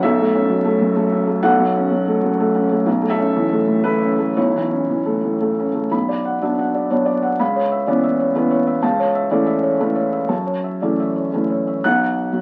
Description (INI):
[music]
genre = neoclassical minimalist piano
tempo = 113-129 BPM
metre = 3/4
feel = rubato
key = B minor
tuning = A4 = 440 Hz
[part]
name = felt-muted upright piano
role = solo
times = 0.0-12.4 s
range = B1 to F#6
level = -18 LUFS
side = equal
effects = none
[sound]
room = moderate small room reverb, RT60 0.5 s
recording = very old 78 rpm record, vinyl crackle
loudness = -19 LUFS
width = mono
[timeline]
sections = 0.0-5.9 A section; 5.9-11.8 B section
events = none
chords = 0.0 F#m7/B; 2.9 A/B; 5.9 Bm; 7.4 C#m7; 8.8 A/C#; 10.3 F#m7; 11.8 B5